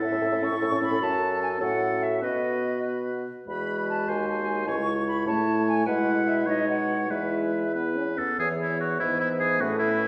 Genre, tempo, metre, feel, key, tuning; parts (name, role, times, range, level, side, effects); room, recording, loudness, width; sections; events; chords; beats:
quick classical-period movement for wind quintet; 99 BPM (dotted quarters); 6/8; rubato; E major; A4 = 440 Hz
silver concert flute; melody; 0.0-10.1 s; B4 to C#6; -33 LUFS; equal
clear oboe; second line; 0.0-10.1 s; E4 to C#5; -32 LUFS; equal
warm French horn; accompaniment; 0.0-10.0 s; E3 to C#4; -35 LUFS; equal
warm clarinet; accompaniment; 0.0-10.1 s; B3 to F#4; -32 LUFS; equal
mellow bassoon; bass; 0.0-10.1 s; C#2 to B2; -33 LUFS; equal
wet recital hall reverb, RT60 1.4 s; heard from further back in the room; -26 LUFS; mono
0.0-8.4 A section; 8.4-10.1 A section
0.0 A; 1.0 F#m; 2.2 B; 3.5 E; 4.1 G#7/D#; 4.7 C#m; 5.3 A; 5.9 E/B; 6.5 B69; 7.1 E; 8.4 E5; 9.0 E/G#
0.42 | 1.01 1.61 | 2.23 2.85 | 3.47 4.08 | 4.68 5.27 | 5.87 6.47 | 7.11 7.75 | 8.39 9.01 | 9.61